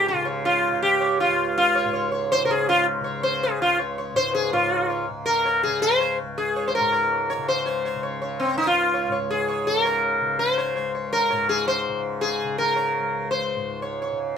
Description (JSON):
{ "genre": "indian classical, Hindustani", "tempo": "164 BPM", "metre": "4/4", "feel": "straight", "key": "Db raga yaman", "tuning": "A4 = 441 Hz", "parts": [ { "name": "sitar", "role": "melody", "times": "0.0-14.2 s", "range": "C4 to Db5", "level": "-20 LUFS", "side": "equal", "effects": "none" }, { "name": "tanpura", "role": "drone", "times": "0.0-14.4 s", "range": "Db2 to Db3", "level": "-31 LUFS", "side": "left 1 dB", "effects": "none" } ], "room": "moderate small room reverb, RT60 0.5 s", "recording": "minimal, uncompressed stereo recording", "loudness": "-20 LUFS", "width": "side -7 dB against mid", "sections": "0.0-4.5 A section; 4.5-14.4 B section", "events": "speeding up 0.0-14.4", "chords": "none" }